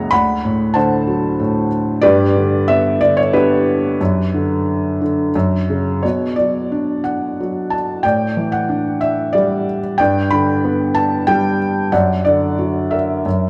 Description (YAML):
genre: classical, lyrical solo piano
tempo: 92 BPM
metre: 3/4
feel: rubato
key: B minor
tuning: A4 = 440 Hz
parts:
  - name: felt-muted upright piano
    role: solo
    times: 0.0-13.5 s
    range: C#2 to B5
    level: -17 LUFS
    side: equal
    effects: none
room: wet plate reverb, RT60 2.5 s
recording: heard from further back in the room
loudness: -17 LUFS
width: mono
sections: 0.0-6.0 A section; 6.0-13.5 B section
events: none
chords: 0.1 D7; 2.0 G; 4.0 Bm/F#; 5.3 F#5; 6.0 Bm; 8.0 A7sus4; 10.0 Gadd9; 11.9 F#aug7